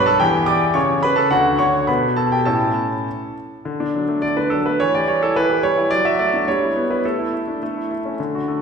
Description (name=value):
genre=classical-period piano sonatina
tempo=106 BPM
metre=2/4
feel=rubato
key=D major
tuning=A4 = 441 Hz
part: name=bright grand piano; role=solo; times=0.0-8.6 s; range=D2 to D6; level=-16 LUFS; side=equal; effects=none
room=wet recital hall reverb, RT60 1.6 s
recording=recorded in a church or concert hall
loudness=-16 LUFS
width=side -6 dB against mid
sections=0.0-3.6 A section; 3.6-8.6 B section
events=none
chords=0.2 Em; 0.8 A/C#; 1.3 D; 1.9 G/B; 2.5 A; 3.6 D; 4.8 Em6; 5.9 D/F#; 6.5 Em/G; 7.0 Asus4; 7.6 A